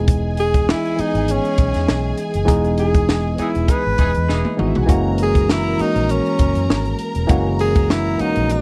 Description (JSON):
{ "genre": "lush 1970s-style soul", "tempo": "100 BPM", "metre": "4/4", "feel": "swing 54% on 16ths", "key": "unclear", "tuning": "A4 = 440 Hz", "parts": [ { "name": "warm studio string section", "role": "second line", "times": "0.0-8.6 s", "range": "D#4 to A#5", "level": "-32 LUFS", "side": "equal", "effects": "none" }, { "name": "tine electric piano", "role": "accompaniment", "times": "0.0-8.6 s", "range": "E3 to D#5", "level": "-24 LUFS", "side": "equal", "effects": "phaser" }, { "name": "mellow French horn section", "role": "sustained chords", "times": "0.0-8.6 s", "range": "E3 to D#5", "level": "-36 LUFS", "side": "equal", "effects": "none" }, { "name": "vintage muted fingered electric bass", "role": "bass", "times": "0.0-8.6 s", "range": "E1 to F#2", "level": "-24 LUFS", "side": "equal", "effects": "none" }, { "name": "compact cocktail drum kit", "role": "drums", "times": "0.1-8.6 s", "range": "hi-hat, kick drum, snare drum, toms", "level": "-20 LUFS", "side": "equal", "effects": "none" }, { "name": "breathy tenor saxophone", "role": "melody", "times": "0.4-8.6 s", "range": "C#4 to B4", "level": "-23 LUFS", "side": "equal", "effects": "none" }, { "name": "warm horn section", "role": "stabs", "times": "3.4-4.7 s", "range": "E3 to G#4", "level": "-31 LUFS", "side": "equal", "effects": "none" } ], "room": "little or no reverb", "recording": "dry, close 1970s-style studio recording", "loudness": "-18 LUFS", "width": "mono", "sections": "0.0-8.6 A section", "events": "band accent 2.5-4.9; drum fill 4.3-4.9", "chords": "0.0 Emaj7; 4.9 F#9" }